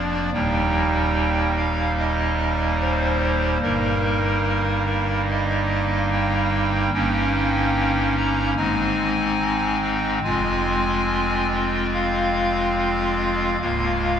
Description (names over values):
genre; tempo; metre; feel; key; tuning
classical, chorale-style piece for pipe organ; 72 BPM; 4/4; rubato; Eb major; A4 = 440 Hz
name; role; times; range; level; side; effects
pipe organ, clarinet reed; solo; 0.0-14.2 s; Db1 to Bb5; -19 LUFS; equal; none
room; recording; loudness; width
wet concert hall reverb, RT60 2.4 s; none; -19 LUFS; side -8 dB against mid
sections
0.0-14.2 A section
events
none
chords
0.3 Eb; 3.6 Eb/G; 6.9 Eb7/G; 8.6 Ab; 10.2 Fm; 13.6 Db6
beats
| 0.33 1.16 1.98 2.79 | 3.62 4.44 5.29 6.12 | 6.93 7.76 8.58 9.40 | 10.24 11.09 11.93 12.77 | 13.60